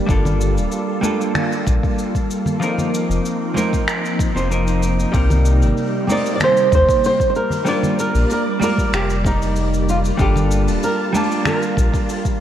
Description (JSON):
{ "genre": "sunset chillout", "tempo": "95 BPM", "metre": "4/4", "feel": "straight", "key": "unclear", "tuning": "A4 = 440 Hz", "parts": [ { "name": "vintage hollow-body jazz guitar", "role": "accompaniment", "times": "0.0-12.4 s", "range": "F3 to A5", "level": "-22 LUFS", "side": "moving between left 2 dB and right 4 dB", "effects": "auto-pan, digital delay" }, { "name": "soft string machine", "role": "sustained chords", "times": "0.0-12.4 s", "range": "C3 to A5", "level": "-24 LUFS", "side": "equal", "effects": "ensemble chorus" }, { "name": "warm sub bass", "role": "bass", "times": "0.1-11.9 s", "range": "D1 to Eb2", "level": "-18 LUFS", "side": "equal", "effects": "none" }, { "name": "electronic kick drum", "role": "drums", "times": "0.1-12.4 s", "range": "none", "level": "-20 LUFS", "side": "equal", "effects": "none" }, { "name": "jazz brush drum kit", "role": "drums", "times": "0.1-12.4 s", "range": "cabasa, finger snaps, hi-hat", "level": "-28 LUFS", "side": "equal", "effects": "none" }, { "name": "congas", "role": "percussion", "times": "0.3-11.6 s", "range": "none", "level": "-25 LUFS", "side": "left 1 dB", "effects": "none" }, { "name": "flamenco guitar", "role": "melody", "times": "6.1-12.4 s", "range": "Eb4 to D5", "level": "-19 LUFS", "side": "right 2 dB", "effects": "tape echo" } ], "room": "moderate lush hall reverb, RT60 2.8 s", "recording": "worn, warbling old tape, cassette tape, warbly pitch drift", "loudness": "-16 LUFS", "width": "side -10 dB against mid", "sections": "0.0-12.4 A section", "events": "none", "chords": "0.1 Gm9; 2.6 F7sus4; 5.1 Cm7; 7.4 Bb6; 10.2 Gm9" }